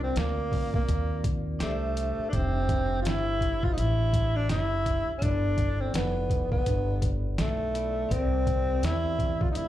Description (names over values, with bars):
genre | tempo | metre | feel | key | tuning
hip hop, jazz-hop | 83 BPM | 4/4 | swing 59% on 16ths | F major | A4 = 440 Hz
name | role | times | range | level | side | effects
mellow tenor saxophone | melody | 0.0-9.7 s | A3 to F4 | -30 LUFS | equal | slapback echo, analog delay
vibraphone with hard mallets | accompaniment | 0.0-9.7 s | B3 to E5 | -38 LUFS | left 2 dB | slapback echo
upright bass | bass | 0.0-9.7 s | F1 to E2 | -29 LUFS | equal | none
boom bap sampler-style drum kit | drums | 0.2-9.7 s | hi-hat, kick drum, snare drum | -30 LUFS | equal | none
room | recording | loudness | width
little or no reverb | live gig heard through the venue's PA, club reverb | -25 LUFS | side -13 dB against mid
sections
0.0-9.7 A section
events
none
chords
0.0 Cm11; 1.6 C; 2.3 Fmaj9; 5.2 G9; 8.1 C7sus2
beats
0.16 0.89 1.61 | 2.33 3.06 3.78 4.50 | 5.22 5.95 6.67 7.39 | 8.12 8.84 9.56